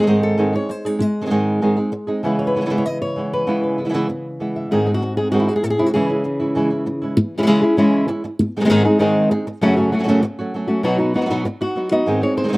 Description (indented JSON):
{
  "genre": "flamenco",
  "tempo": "195 BPM",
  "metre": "4/4",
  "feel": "straight",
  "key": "C# minor",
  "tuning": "A4 = 443 Hz",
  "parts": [
    { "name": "flamenco guitar", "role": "melody", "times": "0.0-12.6 s", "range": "F#2 to E5", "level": "-18 LUFS", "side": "left 1 dB", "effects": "none" },
    { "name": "flamenco guitar", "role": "stabs", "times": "0.0-12.6 s", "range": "F#2 to G#4", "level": "-20 LUFS", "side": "right 1 dB", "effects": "none" }
  ],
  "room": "little or no reverb",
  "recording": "recorded outdoors, with no room sound",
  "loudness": "-16 LUFS",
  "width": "side -22 dB against mid",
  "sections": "0.0-7.2 A section; 7.2-12.1 B section",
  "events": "none",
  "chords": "0.0 G#; 2.2 C#m7; 4.7 G#; 5.9 C#m; 8.4 G#; 9.6 F#m; 10.8 B; 12.1 G#",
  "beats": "0.07 0.38 0.69 | 1.00 1.31 1.62 1.93 | 2.24 2.55 2.86 3.17 | 3.48 3.78 4.09 4.40 | 4.71 5.02 5.33 5.63 | 5.94 6.25 6.56 6.87 | 7.17 7.48 7.79 8.09 | 8.40 8.70 9.01 9.32 | 9.62 9.93 10.23 10.54 | 10.85 11.15 11.46 11.76 | 12.07 12.37"
}